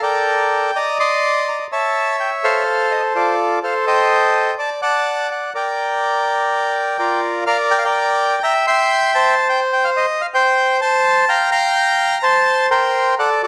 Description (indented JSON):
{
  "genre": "tango",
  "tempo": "126 BPM",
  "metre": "4/4",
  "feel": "rubato",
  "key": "G minor",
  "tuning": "A4 = 439 Hz",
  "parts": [
    { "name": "bandoneon", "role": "solo", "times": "0.0-13.5 s", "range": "F4 to C6", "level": "-17 LUFS", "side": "equal", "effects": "none" }
  ],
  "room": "wet large studio reverb, RT60 1.2 s",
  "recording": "none",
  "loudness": "-17 LUFS",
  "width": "mono",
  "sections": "0.0-7.5 A section; 7.5-13.5 B section",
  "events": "none",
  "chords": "0.0 Gmadd9; 0.8 Cmadd9; 1.7 A; 2.7 Dm7; 3.6 Adim; 4.6 D; 5.5 Gm7; 7.5 Gm; 8.4 C; 9.4 N.C.; 11.3 Fsus24; 12.2 C5"
}